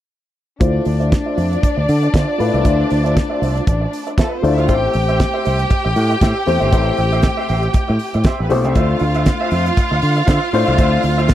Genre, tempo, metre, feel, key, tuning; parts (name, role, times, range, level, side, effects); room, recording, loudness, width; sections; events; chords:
disco; 118 BPM; 4/4; swing 56% on 16ths; D minor; A4 = 441 Hz
rich chamber violin section; second line; 0.6-11.3 s; A3 to G5; -21 LUFS; equal
clear grand piano; accompaniment; 0.6-11.3 s; A3 to C5; -21 LUFS; left 4 dB; low-pass filter
electric guitar through a small old amp; accompaniment; 0.6-11.3 s; F4 to E5; -25 LUFS; right 4 dB; low-pass filter
fingered electric bass; bass; 0.6-11.3 s; G1 to D3; -17 LUFS; equal
damped 70s drum kit; drums; 0.6-11.3 s; hi-hat, kick drum, snare drum; -16 LUFS; equal
small room ambience; dry, close 1970s-style studio recording; -14 LUFS; side -12 dB against mid
0.6-11.3 A section
filter sweep 0.6-11.3
0.6 Dm9; 4.7 Am7; 8.8 Dm9